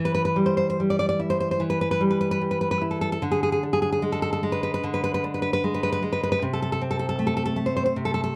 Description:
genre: romantic piece for solo classical guitar.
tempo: 71-79 BPM.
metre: 4/4.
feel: rubato.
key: unclear.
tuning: A4 = 439 Hz.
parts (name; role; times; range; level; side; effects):
nylon-string guitar; solo; 0.0-8.4 s; C3 to D5; -25 LUFS; equal; none.
room: light reverb.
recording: dark, warm production.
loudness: -25 LUFS.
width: mono.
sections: 0.0-8.4 A section.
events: none.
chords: 0.0 Em; 3.2 G#dim/D; 6.4 Am/C.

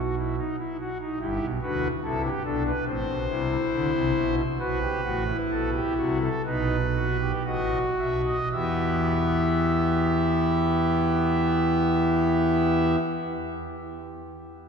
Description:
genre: classical, baroque-style 3-part fugue for pipe organ.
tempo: 55-74 BPM.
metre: 4/4.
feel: straight.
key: E minor.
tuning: A4 = 440 Hz.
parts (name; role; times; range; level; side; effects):
pipe organ, foundations; solo; 0.0-13.0 s; G1 to E5; -23 LUFS; equal; none.
room: wet cathedral reverb, RT60 5.0 s.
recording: minimal, uncompressed stereo recording.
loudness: -23 LUFS.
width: side -6 dB against mid.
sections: 0.0-1.2 A section; 1.2-8.5 B section; 8.5-12.9 C section.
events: slowing down 0.0-8.5.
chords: 0.0 B; 1.2 Em/G; 2.9 Amadd9; 4.6 B7; 8.5 Em.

